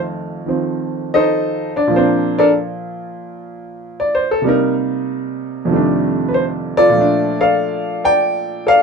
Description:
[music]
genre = solo jazz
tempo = 95 BPM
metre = 4/4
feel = swing 69% on 8ths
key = Bb major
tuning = A4 = 440 Hz
[part]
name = warm upright piano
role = solo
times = 0.0-8.8 s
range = F2 to G5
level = -15 LUFS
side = equal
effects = none
[sound]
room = wet studio reverb, RT60 0.5 s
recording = minimal, uncompressed stereo recording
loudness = -14 LUFS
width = side -5 dB against mid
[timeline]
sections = 0.0-7.0 A section; 7.0-8.8 B section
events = upright piano solo 0.0-7.0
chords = 0.0 F7; 1.9 Bb; 4.4 Cm7; 5.7 F13; 7.0 Bbmaj7

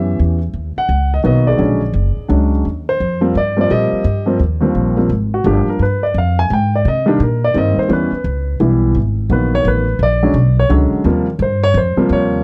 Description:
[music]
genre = jazz piano trio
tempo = 171 BPM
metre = 3/4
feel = swing 64% on 8ths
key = unclear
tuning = A4 = 445 Hz
[part]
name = warm grand piano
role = melody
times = 0.0-12.4 s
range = Eb2 to Ab5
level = -18 LUFS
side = equal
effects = none
[part]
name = upright bass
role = bass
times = 0.0-12.4 s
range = F#1 to C3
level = -18 LUFS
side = equal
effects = none
[sound]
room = small room ambience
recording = dry, close 1970s-style studio recording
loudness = -15 LUFS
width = mono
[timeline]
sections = 0.0-4.8 A section; 4.8-12.4 B section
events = grand piano solo 4.8-12.4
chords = 0.0 A9 (rootless); 0.6 Abm9 (rootless); 1.6 Bb7alt; 2.7 Eb69; 5.8 Fm69; 6.9 Cm7; 7.9 Em6; 9.0 Abm9; 10.0 Bb7alt; 11.1 Eb69

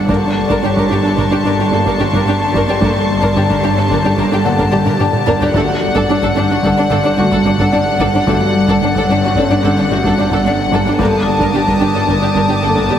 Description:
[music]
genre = cinematic, suspense film score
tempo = 110 BPM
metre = 5/4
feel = straight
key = G hungarian minor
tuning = A4 = 440 Hz
[part]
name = warm symphonic violin section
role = melody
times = 0.0-13.0 s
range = F#5 to A5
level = -20 LUFS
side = left 2 dB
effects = none
[part]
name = glass harmonica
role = sustained chords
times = 0.0-13.0 s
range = D4 to A5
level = -25 LUFS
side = right 2 dB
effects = none
[part]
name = Celtic harp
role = riff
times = 0.0-13.0 s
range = G2 to G3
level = -20 LUFS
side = left 3 dB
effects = none
[part]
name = bowed-like drone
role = drone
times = 0.0-13.0 s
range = G1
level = -23 LUFS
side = equal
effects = none
[part]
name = felt-muted upright piano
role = texture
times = 0.0-11.0 s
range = C#4 to F#5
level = -26 LUFS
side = left 2 dB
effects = none
[part]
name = warm symphonic violin section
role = second line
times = 0.1-13.0 s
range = D4 to Bb4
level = -21 LUFS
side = equal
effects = none
[part]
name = dark symphonic viola section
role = accompaniment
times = 0.1-13.0 s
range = D4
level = -20 LUFS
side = equal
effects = none
[part]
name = mellow French horn section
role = sustained chords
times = 0.1-12.8 s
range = A3 to A4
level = -25 LUFS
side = left 2 dB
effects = none
[part]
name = dark symphonic double bass section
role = bass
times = 0.1-12.9 s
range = G1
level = -22 LUFS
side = right 2 dB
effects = none
[part]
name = warm symphonic cello section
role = bass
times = 0.1-13.0 s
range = G2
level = -21 LUFS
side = right 2 dB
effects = none
[part]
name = solo taiko drums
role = drums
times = 0.1-13.0 s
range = none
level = -23 LUFS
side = equal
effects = none
[part]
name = dark studio violin section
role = texture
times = 0.1-5.2, 11.0-13.0 s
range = A5 to A6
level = -26 LUFS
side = left 2 dB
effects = none
[sound]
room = wet concert hall reverb, RT60 1.9 s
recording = heavily compressed radio sound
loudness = -11 LUFS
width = side -9 dB against mid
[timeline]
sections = 0.0-13.0 A section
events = drum fill 4.9-5.5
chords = 0.1 Gmadd9; 5.5 D/G; 11.0 Gmadd9

